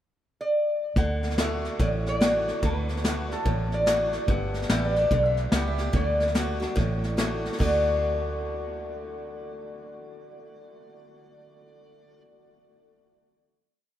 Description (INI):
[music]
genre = honky-tonk and classic country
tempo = 145 BPM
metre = 4/4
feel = swing 63% on 8ths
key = D major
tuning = A4 = 445 Hz
[part]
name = lap resonator guitar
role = melody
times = 0.4-12.2 s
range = A4 to F#5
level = -28 LUFS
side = equal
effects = tape echo
[part]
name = picked swing-style acoustic guitar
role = accompaniment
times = 1.0-12.3 s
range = G2 to G4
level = -34 LUFS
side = equal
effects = none
[part]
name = vintage muted fingered electric bass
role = bass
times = 1.0-12.2 s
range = G1 to D2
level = -29 LUFS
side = equal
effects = none
[part]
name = soft brush drum kit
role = drums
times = 1.0-7.7 s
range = crash cymbal, hi-hat, kick drum, snare drum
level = -28 LUFS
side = equal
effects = none
[sound]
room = moderate huge ambient reverb, RT60 9.0 s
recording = heard from further back in the room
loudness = -23 LUFS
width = side -12 dB against mid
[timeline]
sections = 0.0-1.0 pickup bar; 1.0-7.6 A section; 7.6-10.9 final chord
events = none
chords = 0.0 N.C.; 1.0 D; 4.3 G; 5.9 D